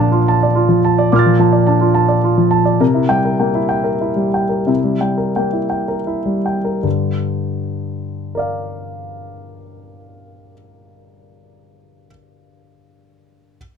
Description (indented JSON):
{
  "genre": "neoclassical minimalist piano",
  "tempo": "78-108 BPM",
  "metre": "3/4",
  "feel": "rubato",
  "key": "G dorian",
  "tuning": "A4 = 440 Hz",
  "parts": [
    { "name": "warm concert grand piano", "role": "solo", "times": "0.0-13.6 s", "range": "G2 to A6", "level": "-14 LUFS", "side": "equal", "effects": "none" }
  ],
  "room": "light reverb",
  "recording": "close, detailed microphones",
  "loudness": "-14 LUFS",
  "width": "side -7 dB against mid",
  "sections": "0.0-6.8 A section; 6.8-11.4 B section",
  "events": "slowing down 2.0-6.8",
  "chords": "0.0 Bbmaj7; 2.8 C7; 6.8 Gm7"
}